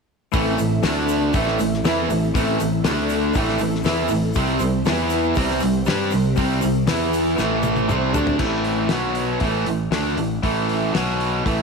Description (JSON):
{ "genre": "classic rock", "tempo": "119 BPM", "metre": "4/4", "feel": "straight", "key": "A dorian", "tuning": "A4 = 439 Hz", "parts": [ { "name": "string machine, violas", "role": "sustained chords", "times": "0.3-8.4 s", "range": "A3 to E5", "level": "-28 LUFS", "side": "left 1 dB", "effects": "ensemble chorus" }, { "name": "cranked stack guitar", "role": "riff", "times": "0.3-11.6 s", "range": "A2 to G4", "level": "-24 LUFS", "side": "left 12 dB", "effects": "overdrive" }, { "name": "cranked stack guitar", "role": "riff", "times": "0.3-11.6 s", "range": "A2 to G4", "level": "-22 LUFS", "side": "right 12 dB", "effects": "overdrive" }, { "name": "modern bright picked electric bass", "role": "bass", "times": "0.3-11.6 s", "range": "A1 to G2", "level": "-26 LUFS", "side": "equal", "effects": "none" }, { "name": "damped 70s drum kit", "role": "drums", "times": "0.3-11.6 s", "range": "crash cymbal, hi-hat, kick drum, snare drum, toms", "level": "-26 LUFS", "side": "left 3 dB", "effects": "none" }, { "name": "tube shaker", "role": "percussion", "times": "0.3-8.3 s", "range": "none", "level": "-42 LUFS", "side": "left 16 dB", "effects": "none" } ], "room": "moderate echo chamber reverb, RT60 1.5 s, studio reverb", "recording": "1960s-style stereo with parts hard left and right", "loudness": "-18 LUFS", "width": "side -4 dB against mid", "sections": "0.3-8.4 A section; 8.4-11.6 B section", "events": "drum fill 7.4-8.4", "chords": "0.3 Am; 0.8 D5; 1.3 Am; 2.8 D5; 3.4 Am; 4.4 C5; 4.9 E5; 5.4 C5; 6.9 E5; 7.4 A5; 7.9 C5; 8.4 A5; 8.9 B5; 9.4 A5; 10.9 B5" }